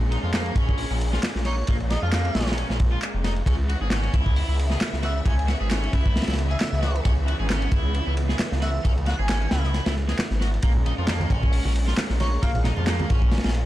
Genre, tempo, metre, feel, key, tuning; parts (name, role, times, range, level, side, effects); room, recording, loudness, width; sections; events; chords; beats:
breakbeat, breaks; 134 BPM; 4/4; swing 55% on 16ths; A4 = 441 Hz
bright studio string section; sustained chords; 0.0-13.7 s; Db3 to Fb5; -34 LUFS; equal; sidechain pumping
phased detuned saw bass; bass; 0.0-13.7 s; F1 to F2; -24 LUFS; equal; phaser
crunchy overdriven guitar; riff; 0.1-13.5 s; Bb3 to Ab4; -33 LUFS; equal; low-pass filter, digital delay
crunchy breakbeat drum kit; drums; 0.1-13.7 s; hi-hat, kick drum, ride cymbal, snare drum; -25 LUFS; equal
electronic handclaps; drums; 0.3-13.0 s; -33 LUFS; equal
airy dreamy lead; melody; 1.5-12.6 s; Db5 to Ab5; -34 LUFS; equal; chorus, small speaker sound, digital delay
congas; percussion; 10.8-13.4 s; -32 LUFS; right 2 dB
studio ambience; dark, warm production; -21 LUFS; side -15 dB against mid
0.0-13.7 A section
0.0 Bbm7; 3.5 Dbm7; 10.6 Bbm7
0.34 0.78 1.23 | 1.68 2.13 2.58 3.02 | 3.47 3.92 4.37 4.81 | 5.26 5.71 6.16 6.61 | 7.05 7.50 7.95 8.40 | 8.84 9.29 9.74 10.19 | 10.63 11.08 11.53 11.98 | 12.43 12.87 13.32